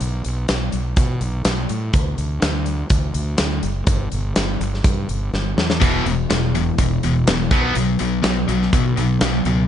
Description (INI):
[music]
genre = hard rock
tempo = 124 BPM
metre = 4/4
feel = straight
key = E minor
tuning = A4 = 440 Hz
[part]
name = fuzz fingered electric bass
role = bass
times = 0.0-9.6 s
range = E1 to B2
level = -22 LUFS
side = equal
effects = overdrive
[part]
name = big rock drum kit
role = drums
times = 0.0-9.6 s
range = hi-hat, kick drum, snare drum, splash cymbal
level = -20 LUFS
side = equal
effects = none
[part]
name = cranked stack guitar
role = riff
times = 5.8-9.7 s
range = E2 to B3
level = -23 LUFS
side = right 10 dB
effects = overdrive
[part]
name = scooped high-gain guitar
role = riff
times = 5.8-9.7 s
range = E2 to B3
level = -21 LUFS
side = left 9 dB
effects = distortion
[sound]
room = little or no reverb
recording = nothing above 10.3 kHz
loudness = -17 LUFS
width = side -10 dB against mid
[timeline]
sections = 0.0-9.7 A section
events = drum fill 5.3-5.8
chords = 0.0 N.C.; 3.9 Em/G; 5.8 E5; 7.5 B5